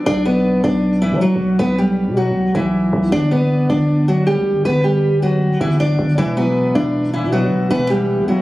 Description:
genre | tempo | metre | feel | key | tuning
hip hop, trap | 157 BPM | 4/4 | half-time | B minor | A4 = 445 Hz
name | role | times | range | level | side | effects
fingerpicked steel-string acoustic guitar | melody | 0.0-8.4 s | E3 to D5 | -16 LUFS | equal | none
dark concert grand piano | accompaniment | 0.0-0.1, 6.2-8.4 s | E3 to E4 | -23 LUFS | left 2 dB | none
growling 808-style bass | bass | 0.1-8.4 s | E1 to F#3 | -18 LUFS | equal | none
room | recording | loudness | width
light reverb, small room ambience | recorded on a phone in the room, studio reverb | -14 LUFS | side -17 dB against mid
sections
0.1-8.4 A section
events
none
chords
0.1 Bm; 3.1 G; 6.2 Esus2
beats
| 0.07 0.45 0.83 1.21 | 1.59 1.98 2.36 2.74 | 3.12 3.50 3.89 4.27 | 4.65 5.03 5.42 5.80 | 6.18 6.56 6.94 7.33 | 7.71 8.09

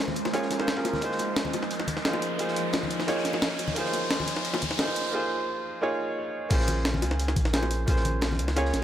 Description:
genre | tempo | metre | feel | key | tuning
liquid drum and bass | 175 BPM | 4/4 | straight | unclear | A4 = 435 Hz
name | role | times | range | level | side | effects
warm grand piano | accompaniment | 0.0-8.8 s | Bb3 to Db5 | -29 LUFS | right 1 dB | dub echo
glassy FM pad | sustained chords | 0.0-5.1 s | F3 to C5 | -36 LUFS | right 1 dB | ensemble chorus, built-in reverb, sidechain pumping
warm sub bass | bass | 0.0-8.8 s | Bb1 to F2 | -31 LUFS | equal | high-pass filter
riser | sound effects | 0.0-5.1 s | none | -35 LUFS | equal | none
crunchy breakbeat drum kit | drums | 0.1-8.8 s | hi-hat, snare drum | -39 LUFS | equal | none
congas and bongos | percussion | 0.1-8.5 s | none | -35 LUFS | left 4 dB | none
breakbeat sampler-style drum kit | drums | 0.2-8.8 s | crash cymbal, hi-hat, snare drum | -30 LUFS | equal | none
electronic kick drum | drums | 0.8-8.0 s | none | -26 LUFS | equal | high-pass filter on kick, high-pass filter on room
room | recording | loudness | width
moderate lush hall reverb, RT60 1.8 s | none | -25 LUFS | side -11 dB against mid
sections
0.0-6.5 A section; 6.5-8.8 B section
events
build-up 0.0-6.5; riser 0.0-5.1; break 5.1-6.5; drop 6.5-8.8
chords
0.0 Bbm9; 1.0 Dbmaj13; 6.5 Bbm9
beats
0.34 0.68 | 1.02 1.36 1.71 2.05 | 2.39 2.74 3.08 3.42 | 3.77 4.11 4.45 4.79 | 5.14 5.48 5.82 6.17 | 6.51 6.85 7.19 7.54 | 7.88 8.22 8.56

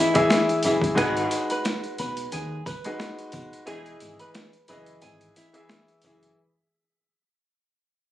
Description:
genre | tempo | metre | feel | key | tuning
hip hop, boom-bap hip-hop | 89 BPM | 4/4 | swing 55% on 16ths | unclear | A4 = 439 Hz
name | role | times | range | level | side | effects
nylon-string guitar | melody | 0.0-6.3 s | E4 to B5 | -28 LUFS | equal | high-pass filter, low-pass filter, slapback echo
warm baby grand piano | accompaniment | 0.0-6.4 s | E3 to E5 | -25 LUFS | left 1 dB | cassette tape, high-pass filter, low-pass filter
boom bap sampler-style drum kit | drums | 0.1-6.4 s | hi-hat, kick drum, snare drum | -27 LUFS | equal | overdrive
sleigh bells | percussion | 0.3-6.2 s | none | -38 LUFS | right 1 dB | none
deep dub fingered electric bass | bass | 0.6-6.3 s | E1 to D#2 | -35 LUFS | equal | none
warm saxophone section | stabs | 1.0-3.9 s | D#3 to G#4 | -33 LUFS | right 1 dB | high-pass filter, low-pass filter, slapback echo
room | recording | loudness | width
light reverb, studio reverb | recorded on a phone in the room, studio ambience, vinyl crackle, compression | -22 LUFS | side -13 dB against mid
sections
0.0-6.4 A section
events
fade-out 0.0-6.4; break 3.7-6.4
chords
0.0 E; 1.0 G#m7; 3.7 Emaj7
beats
0.30 | 0.97 1.65 2.32 3.00 | 3.67 4.35 5.02 5.69

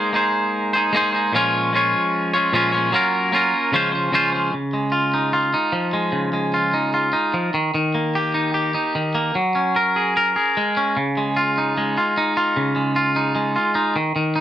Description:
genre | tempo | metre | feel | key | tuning
rock | 150 BPM | 4/4 | straight | Db major | A4 = 441 Hz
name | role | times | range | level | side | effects
twangy electric guitar | solo | 0.0-14.4 s | Bb2 to Db5 | -17 LUFS | equal | none
room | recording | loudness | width
moderate studio reverb, RT60 0.6 s | none | -17 LUFS | side -11 dB against mid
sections
0.0-4.5 A section; 4.5-11.0 B section; 11.0-14.4 C section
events
none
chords
0.0 Abadd9; 1.3 Bbm7; 2.9 Gbmaj7; 3.7 Dbmaj7; 4.5 Dbadd9; 7.5 Eb; 9.4 Gbadd9; 11.0 Dbadd9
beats
0.14 0.54 0.94 | 1.34 1.74 2.14 2.54 | 2.94 3.34 3.74 4.14 | 4.54 4.94 5.34 5.74 | 6.14 6.54 6.95 7.35 | 7.75 8.15 8.55 8.95 | 9.35 9.75 10.15 10.56 | 10.96 11.36 11.76 12.16 | 12.56 12.96 13.36 13.76 | 14.16

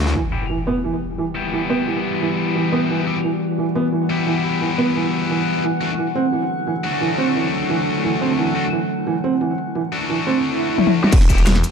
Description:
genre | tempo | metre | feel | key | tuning
dark technical drum and bass | 175 BPM | 4/4 | straight | E minor | A4 = 441 Hz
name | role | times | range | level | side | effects
high-gain distorted guitar | stabs | 0.0-11.4 s | A3 to G4 | -24 LUFS | left 5 dB | distortion, low-pass filter, ping-pong delay
snarling distorted saw bass | bass | 0.0-0.1, 11.1-11.6 s | E1 to D2 | -18 LUFS | equal | distortion, overdrive, sidechain pumping
crunchy breakbeat drum kit | drums | 0.1, 11.1-11.7 s | hi-hat, snare drum | -31 LUFS | left 1 dB | none
metallic inharmonic drone | sustained chords | 1.0-11.7 s | D3 to F#5 | -23 LUFS | equal | chorus, built-in reverb, sidechain pumping
felt-muted upright piano | arpeggios | 0.2-10.4 s | E3 to C4 | -22 LUFS | right 3 dB | sidechain pumping, low-pass filter, ping-pong delay
dubstep drum kit | drums | 0.2-11.7 s | crash cymbal, hi-hat, shaker, snare drum, toms | -19 LUFS | left 4 dB | low-pass filter on hats, low-pass filter on perc, low-pass filter on snare, low-pass filter on toms, low-pass filter on cymbals
impact and swell | sound effects | 0.2-1.5, 10.5-11.1 s | none | -25 LUFS | right 2 dB | none
electronic kick drum | drums | 11.1-11.4 s | none | -14 LUFS | equal | distortion
room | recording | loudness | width
moderate plate reverb, RT60 1.4 s, digital ambience | dark, warm production | -17 LUFS | side -6 dB against mid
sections
0.2-11.1 A section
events
break 0.0; impact 0.2-1.5; filter sweep on synth drone 0.2-11.1; swell 10.5-11.1; drum fill 10.8-11.1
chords
0.2 Em; 5.6 D; 11.1 Em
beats
| 0.15 0.50 0.84 1.18 | 1.52 1.87 2.21 2.55 | 2.90 3.24 3.58 3.92 | 4.27 4.61 4.95 5.30 | 5.64 5.98 6.33 6.67 | 7.01 7.35 7.70 8.04 | 8.38 8.72 9.07 9.41 | 9.75 10.10 10.44 10.78 | 11.12 11.47

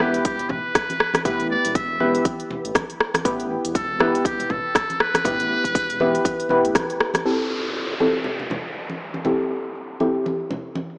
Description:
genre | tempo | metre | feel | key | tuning
afro house | 120 BPM | 4/4 | swing 58% on 16ths | A minor | A4 = 439 Hz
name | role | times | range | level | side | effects
trumpet with metal mute | melody | 0.0-7.0 s | G4 to E5 | -24 LUFS | equal | analog delay
deep mellow chord stab | stabs | 0.0-11.0 s | B3 to B4 | -23 LUFS | equal | chorus, cassette tape, sidechain pumping, tape echo
dark detuned saw bass | bass | 0.0-6.7 s | E1 to A1 | -33 LUFS | equal | sidechain pumping
house drum kit | drums | 0.0-11.0 s | crash cymbal, hi-hat, rim click | -22 LUFS | equal | low-pass filter on snare, studio reverb, low-pass filter on hats, low-pass filter on cymbals
electronic kick drum | drums | 0.3-6.9 s | none | -25 LUFS | equal | studio reverb
congas | percussion | 0.4-10.9 s | none | -32 LUFS | equal | none
downlifter | sound effects | 7.3-11.0 s | none | -30 LUFS | equal | none
room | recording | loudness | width
moderate plate reverb, RT60 1.5 s | dry, gritty hardware recording, small speaker sound | -19 LUFS | side -28 dB against mid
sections
0.0-7.3 A section; 7.3-11.0 B section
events
band accent 6.8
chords
0.0 Em; 7.3 Am7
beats
0.25 0.75 | 1.25 1.75 2.25 2.75 | 3.25 3.75 4.25 4.75 | 5.25 5.75 6.25 6.75 | 7.25 7.75 8.25 8.75 | 9.25 9.75 10.25 10.75

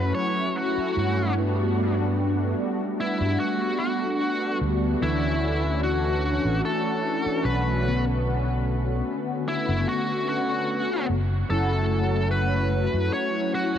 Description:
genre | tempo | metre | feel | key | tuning
vaporwave | 74 BPM | 4/4 | swing 54% on 16ths | unclear | A4 = 440 Hz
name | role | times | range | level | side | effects
smooth overdriven lead guitar | melody | 0.0-13.8 s | E4 to C#5 | -28 LUFS | equal | vintage 12-bit sampler grit, tape echo
mellow synth brass | accompaniment | 0.0-13.8 s | D3 to F#4 | -26 LUFS | left 1 dB | lush chorus, tape echo
fingered electric bass | bass | 0.0-13.8 s | F#1 to G2 | -25 LUFS | equal | tube saturation
room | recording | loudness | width
moderate huge ambient reverb, RT60 9.0 s | cassette tape | -22 LUFS | side -9 dB against mid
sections
0.0-13.8 A section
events
none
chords
0.0 F#m7; 1.4 Gmaj9; 5.0 Dmaj9; 7.9 Bm7; 11.1 F#m7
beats
0.15 0.96 | 1.78 2.59 3.40 4.21 | 5.02 5.83 6.64 7.45 | 8.26 9.07 9.88 10.70 | 11.51 12.32 13.13

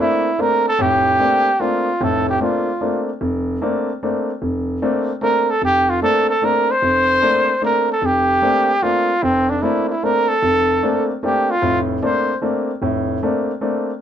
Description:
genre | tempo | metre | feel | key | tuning
jazz | 150 BPM | 3/4 | swing 67% on 8ths | Bb lydian | A4 = 441 Hz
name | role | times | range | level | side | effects
breathy trumpet | melody | 0.0-3.0, 5.2-12.4 s | C4 to C5 | -16 LUFS | right 1 dB | none
clear baby grand piano | accompaniment | 0.0-13.9 s | F1 to D4 | -20 LUFS | left 1 dB | none
room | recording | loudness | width
moderate studio reverb, RT60 0.6 s | dark, warm production | -15 LUFS | side -9 dB against mid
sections
0.0-14.0 A section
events
none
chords
0.0 Bbmaj9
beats
0.38 | 0.78 1.19 1.59 | 1.99 2.39 2.79 | 3.19 3.60 4.00 | 4.40 4.80 5.20 | 5.60 6.00 6.40 | 6.80 7.21 7.61 | 8.01 8.41 8.81 | 9.21 9.61 10.01 | 10.41 10.81 11.21 | 11.61 12.01 12.41 | 12.81 13.21 13.61

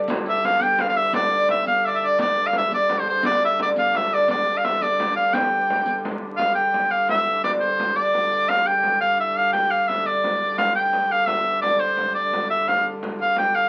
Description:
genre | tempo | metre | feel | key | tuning
medieval dance | 114 BPM (dotted quarters) | 6/8 | straight | unclear | A4 = 442 Hz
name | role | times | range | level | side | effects
dark hurdy-gurdy | drone | 0.0-13.7 s | G2 to D3 | -35 LUFS | equal | none
frame drum | percussion | 0.1-13.5 s | none | -33 LUFS | equal | none
riq | percussion | 0.1-6.0 s | none | -35 LUFS | equal | none
edgy shawm | melody | 0.3-13.7 s | C5 to G5 | -22 LUFS | equal | none
oud | second line | 0.3-13.7 s | C4 to G4 | -30 LUFS | equal | none
room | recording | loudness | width
wet studio ambience, RT60 0.5 s | very old 78 rpm record, vinyl crackle | -21 LUFS | mono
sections
0.0-6.4 A section; 6.4-13.7 B section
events
none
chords
none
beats
| 0.09 0.62 | 1.14 1.67 | 2.19 2.71 | 3.24 3.76 | 4.29 4.81 | 5.33 5.86 | 6.38 6.91 | 7.43 7.96 | 8.48 9.00 | 9.53 10.05 | 10.58 11.10 | 11.62 12.15 | 12.67 13.20

